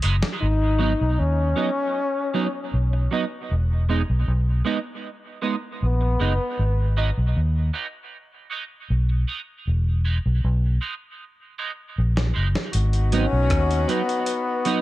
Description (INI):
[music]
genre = dub reggae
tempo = 78 BPM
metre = 4/4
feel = straight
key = G# minor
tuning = A4 = 440 Hz
[part]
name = clean electric guitar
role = accompaniment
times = 0.0-14.8 s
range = F#3 to D#4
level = -28 LUFS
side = right 6 dB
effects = analog chorus, high-pass filter, dub echo
[part]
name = vintage muted fingered electric bass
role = bass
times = 0.0-13.8 s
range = E1 to D#2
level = -20 LUFS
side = equal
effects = none
[part]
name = dusty soul sampler-style drum kit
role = drums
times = 0.0-0.4, 12.2-14.8 s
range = hi-hat, kick drum, rim click, snare drum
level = -28 LUFS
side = equal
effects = none
[part]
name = warm trombone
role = melody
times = 0.4-6.6, 13.2-14.8 s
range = B3 to D#4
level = -25 LUFS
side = left 3 dB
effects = dub echo
[part]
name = mellow horn section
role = second line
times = 12.7-14.8 s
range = B3 to F#4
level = -30 LUFS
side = left 2 dB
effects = high-pass filter, dub echo
[sound]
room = digital ambience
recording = echo-heavy mix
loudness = -20 LUFS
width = side -16 dB against mid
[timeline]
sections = 0.4-12.7 A section; 12.7-14.8 B section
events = break 0.0-0.4; drum fill 0.0-0.4, 11.2-12.7; filter sweep on clean electric guitar 3.5-12.7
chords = 0.4 G#m7; 3.5 Emaj7; 6.6 G#m7; 9.7 Emaj7; 12.7 G#m7